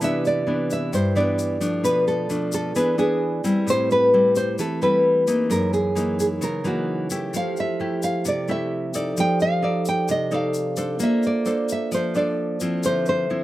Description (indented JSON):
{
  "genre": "bossa nova",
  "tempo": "131 BPM",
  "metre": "4/4",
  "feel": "straight",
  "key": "C major",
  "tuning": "A4 = 440 Hz",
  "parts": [
    { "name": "nylon-string guitar", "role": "melody", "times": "0.0-13.4 s", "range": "F#4 to G5", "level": "-22 LUFS", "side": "equal", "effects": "slapback echo" },
    { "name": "nylon-string guitar", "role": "accompaniment", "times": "0.0-13.4 s", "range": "F#2 to D5", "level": "-24 LUFS", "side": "left 1 dB", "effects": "none" },
    { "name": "vibraphone with soft mallets", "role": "accompaniment", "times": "0.0-13.4 s", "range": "F3 to E5", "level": "-28 LUFS", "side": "right 5 dB", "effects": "slapback echo" },
    { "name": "egg shaker", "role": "percussion", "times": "0.0-13.3 s", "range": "none", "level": "-36 LUFS", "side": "left 5 dB", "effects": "none" }
  ],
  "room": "little or no reverb",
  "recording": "recorded outdoors, with no room sound",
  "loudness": "-20 LUFS",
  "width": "side -15 dB against mid",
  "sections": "0.0-13.4 A section",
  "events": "none",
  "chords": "0.0 Cmaj9; 1.8 Bm7b5; 2.8 E7; 3.7 Am7; 5.5 F#13; 7.3 Fmaj9; 9.2 F13; 11.0 Bbmaj9; 12.8 Dm9"
}